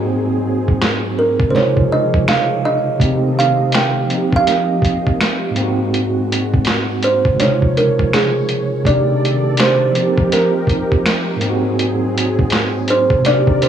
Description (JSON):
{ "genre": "lo-fi hip hop", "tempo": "82 BPM", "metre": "4/4", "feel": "swing 66% on 16ths", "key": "unclear", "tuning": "A4 = 440 Hz", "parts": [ { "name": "mellow tine electric piano", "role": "accompaniment", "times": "0.0-13.7 s", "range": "Ab2 to G4", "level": "-18 LUFS", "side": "right 1 dB", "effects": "medium stereo tremolo, cassette tape" }, { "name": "warm analog pad", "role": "sustained chords", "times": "0.0-13.7 s", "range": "Eb3 to Eb5", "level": "-24 LUFS", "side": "equal", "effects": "chorus" }, { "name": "lo-fi sampler-style drum kit", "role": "drums", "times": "0.7-13.7 s", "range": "finger snaps, hi-hat, kick drum, snare drum", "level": "-18 LUFS", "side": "equal", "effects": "none" }, { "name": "kalimba", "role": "melody", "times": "1.2-13.7 s", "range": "Ab4 to G5", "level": "-17 LUFS", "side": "right 3 dB", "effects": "tape echo" } ], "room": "light reverb, digital ambience", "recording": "small room ambience", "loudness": "-13 LUFS", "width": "side -9 dB against mid", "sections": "0.0-13.7 A section", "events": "break 0.1-3.0", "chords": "0.0 Ab7; 1.5 Dbmaj7; 3.0 Cm6; 4.1 F9sus4; 5.6 Ab7; 7.4 Dbmaj7; 8.9 Cm69; 9.9 F9sus4; 11.4 Ab7" }